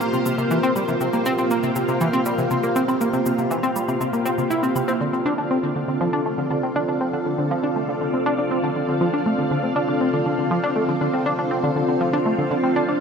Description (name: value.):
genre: ambient, sequencer-driven space music.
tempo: 120 BPM.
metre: 4/4.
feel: straight.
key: D minor.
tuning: A4 = 440 Hz.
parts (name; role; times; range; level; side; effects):
string machine, full ensemble; sustained chords; 0.0-13.0 s; Bb3 to F5; -22 LUFS; equal; ensemble chorus.
tight sequenced synth; riff; 0.0-13.0 s; C3 to E4; -22 LUFS; equal; chorus, vintage 12-bit sampler grit, tape echo.
cabasa and woodblock; percussion; 0.0-5.0 s; none; -37 LUFS; left 1 dB; overdrive, tape echo.
bubbling stepped-filter texture; texture; 0.0-13.0 s; C5; -37 LUFS; right 1 dB; none.
room: wet cathedral reverb, RT60 6.2 s.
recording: in a vast, echoing space.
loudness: -19 LUFS.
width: side -6 dB against mid.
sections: 0.0-5.0 A section; 5.0-13.0 B section.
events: none.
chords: 0.0 C7sus4; 5.0 Dm7.